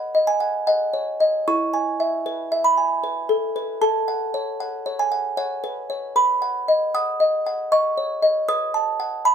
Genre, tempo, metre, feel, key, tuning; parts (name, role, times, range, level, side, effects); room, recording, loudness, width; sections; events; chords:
classical, lullaby for music box; 77 BPM; 3/4; straight; A4 = 441 Hz
music box; solo; 0.0-9.3 s; E4 to D#6; -19 LUFS; equal
light reverb; -19 LUFS; side -8 dB against mid
0.0-9.3 A section
0.0 B; 1.5 E; 3.8 F#m/A; 6.2 B; 8.5 B7